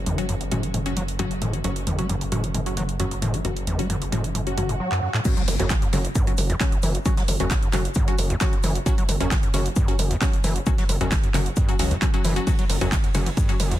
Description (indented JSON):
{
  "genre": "driving peak-time techno",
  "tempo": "133 BPM",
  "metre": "4/4",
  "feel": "straight",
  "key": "F# phrygian",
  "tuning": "A4 = 440 Hz",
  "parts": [
    { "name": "gritty driven synth bass", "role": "bass", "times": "0.0-13.7 s", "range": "F#1 to C#2", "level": "-27 LUFS", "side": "equal", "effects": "distortion, tube saturation, sidechain pumping" },
    { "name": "overdriven acid bass", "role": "riff", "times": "0.1-13.8 s", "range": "F#1 to A3", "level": "-28 LUFS", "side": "equal", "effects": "sidechain pumping, ping-pong delay" },
    { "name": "techno drum kit", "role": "drums", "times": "0.1-13.8 s", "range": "crash cymbal, handclaps, hi-hat, ride cymbal, toms", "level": "-28 LUFS", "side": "equal", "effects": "sidechain pumping on hats, sidechain pumping on toms, sidechain pumping on cymbals" },
    { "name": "wavetable chord stab", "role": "stabs", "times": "0.2-13.6 s", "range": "F#3 to F#4", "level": "-30 LUFS", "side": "left 2 dB", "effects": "sidechain pumping, ping-pong delay" },
    { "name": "swell and impact", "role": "sound effects", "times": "4.5-7.1 s", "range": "none", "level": "-32 LUFS", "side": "right 2 dB", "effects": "none" },
    { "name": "soft brush drum kit", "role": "drums", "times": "5.2-13.7 s", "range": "hi-hat, shaker, snare drum", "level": "-38 LUFS", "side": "left 4 dB", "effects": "sidechain pumping on hats, high-pass filter on hats, soft clipping on snare, high-pass filter on snare, sidechain pumping on perc, high-pass filter on perc, high-pass filter on room" },
    { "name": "electronic kick drum", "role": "drums", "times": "5.3-13.5 s", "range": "none", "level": "-22 LUFS", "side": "equal", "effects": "none" }
  ],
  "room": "digital ambience",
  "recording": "dense, heavily limited modern master",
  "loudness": "-20 LUFS",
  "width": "side -14 dB against mid",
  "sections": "0.0-5.3 A section; 5.3-13.8 B section",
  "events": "swell 4.5-5.3; drum fill 4.9-5.3; drop 5.3-13.8; impact 5.3-7.1",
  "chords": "0.0 F#5"
}